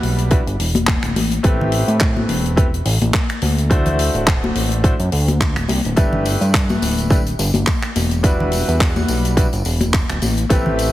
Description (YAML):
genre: nu-disco, nu disco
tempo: 106 BPM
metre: 4/4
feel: swing 55% on 16ths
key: G major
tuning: A4 = 439 Hz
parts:
  - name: bright baby grand piano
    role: accompaniment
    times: 0.0-10.9 s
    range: G3 to C5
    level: -23 LUFS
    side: equal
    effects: sidechain pumping
  - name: fat analog bass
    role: bass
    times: 0.0-10.9 s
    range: D1 to A2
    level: -19 LUFS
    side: equal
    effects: tube saturation
  - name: tight funk drum kit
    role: drums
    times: 0.0-10.9 s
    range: finger snaps, handclaps, hi-hat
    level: -24 LUFS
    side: left 1 dB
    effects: none
  - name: electronic kick drum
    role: drums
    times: 0.3-10.6 s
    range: none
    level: -17 LUFS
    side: equal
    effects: none
  - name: congas and tambourine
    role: percussion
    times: 0.7-10.9 s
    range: none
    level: -23 LUFS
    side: left 3 dB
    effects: none
room: light reverb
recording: heavily compressed radio sound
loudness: -15 LUFS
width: side -14 dB against mid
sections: 0.0-10.9 A section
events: none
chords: 0.0 Em7; 1.2 Am9; 3.4 D7; 6.0 G69; 8.2 Em7; 10.2 Am9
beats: 0.31 0.88 | 1.44 2.01 2.58 3.14 | 3.71 4.27 4.84 5.41 | 5.97 6.54 7.11 7.67 | 8.24 8.80 9.37 9.94 | 10.50